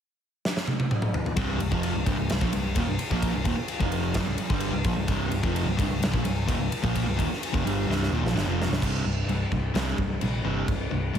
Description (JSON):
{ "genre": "hard rock", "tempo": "129 BPM", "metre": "4/4", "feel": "straight", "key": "unclear", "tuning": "A4 = 442 Hz", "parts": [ { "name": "big rock drum kit", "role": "drums", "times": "0.5-11.2 s", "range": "crash cymbal, kick drum, ride cymbal, snare drum, toms", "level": "-28 LUFS", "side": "equal", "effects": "none" }, { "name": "overdriven semi-hollow guitar", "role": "riff", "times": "1.4-11.2 s", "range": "C2 to Bb3", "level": "-30 LUFS", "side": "right 10 dB", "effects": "none" }, { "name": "sludgy distorted guitar", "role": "riff", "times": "1.4-11.2 s", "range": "C2 to Bb3", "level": "-30 LUFS", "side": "left 8 dB", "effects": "overdrive" }, { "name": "picked electric bass", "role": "bass", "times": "1.4-11.2 s", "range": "C1 to C2", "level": "-30 LUFS", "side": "equal", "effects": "none" } ], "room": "light reverb", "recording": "heavily compressed radio sound, multiband compression", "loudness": "-24 LUFS", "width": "side -9 dB against mid", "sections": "0.0-1.4 A section; 1.4-8.8 B section; 8.8-11.2 C section", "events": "drum fill 0.4-1.4, 7.9-8.8", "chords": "0.0 N.C.; 1.4 C5", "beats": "0.43 0.90 | 1.36 1.83 2.29 2.75 | 3.22 3.68 4.15 4.61 | 5.08 5.54 6.01 6.48 | 6.94 7.41 7.88 8.34 | 8.81 9.28 9.74 10.21 | 10.68 11.15" }